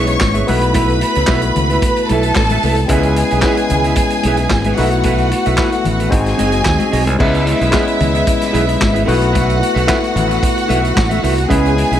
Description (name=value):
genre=disco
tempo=112 BPM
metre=4/4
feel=straight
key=C# minor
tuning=A4 = 440 Hz
part: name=warm symphonic violin section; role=second line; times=0.0-12.0 s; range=E4 to C#6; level=-18 LUFS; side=right 1 dB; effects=none
part: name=barky tine electric piano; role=accompaniment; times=0.0-12.0 s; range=G#3 to B#4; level=-18 LUFS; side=left 4 dB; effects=overdrive
part: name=mellow electric guitar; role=accompaniment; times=0.0-12.0 s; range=B#3 to E5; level=-22 LUFS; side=right 5 dB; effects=lush chorus
part: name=modern bright fingered electric bass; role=bass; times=0.0-12.0 s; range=F#1 to D#2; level=-17 LUFS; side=right 1 dB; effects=none
part: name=vintage drum kit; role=drums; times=0.1-12.0 s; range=crash cymbal, handclaps, hi-hat, kick drum, snare drum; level=-20 LUFS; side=right 1 dB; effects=none
part: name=congas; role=percussion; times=0.2-11.6 s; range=none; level=-25 LUFS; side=left 5 dB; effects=none
room=light reverb, studio ambience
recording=none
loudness=-12 LUFS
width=side -10 dB against mid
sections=0.0-7.2 A section; 7.2-12.0 A section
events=none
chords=0.5 B7sus4; 2.9 C#m7; 4.8 B7sus4; 6.1 G#7; 7.2 C#m7; 9.1 B7sus4; 11.5 C#m7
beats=0.22 | 0.75 1.29 1.83 2.37 | 2.90 3.44 3.98 4.52 | 5.05 5.59 6.13 6.67 | 7.20 7.74 8.28 8.81 | 9.35 9.89 10.42 10.96 | 11.50